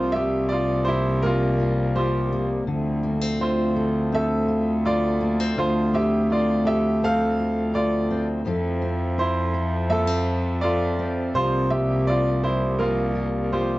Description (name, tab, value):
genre	acoustic folk-pop ballad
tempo	83 BPM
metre	4/4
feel	straight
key	unclear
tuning	A4 = 440 Hz
part	bright grand piano	melody	0.0-13.8 s	E4 to F5	-24 LUFS	right 1 dB	none
part	fingerpicked steel-string acoustic guitar	accompaniment	0.0-13.8 s	F2 to A4	-27 LUFS	left 2 dB	none
part	pedal harmonium	sustained chords	0.0-13.8 s	C3 to E5	-32 LUFS	right 1 dB	none
part	warm cello	bass	0.0-13.8 s	C2 to F2	-24 LUFS	equal	none
room	light reverb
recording	worn, warbling old tape, cassette tape, warbly pitch drift, nothing above 7.8 kHz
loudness	-20 LUFS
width	side -18 dB against mid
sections	0.0-13.8 A section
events	none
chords	0.0 C7sus4; 2.7 Dm7; 8.5 Fmaj7; 11.3 C7sus4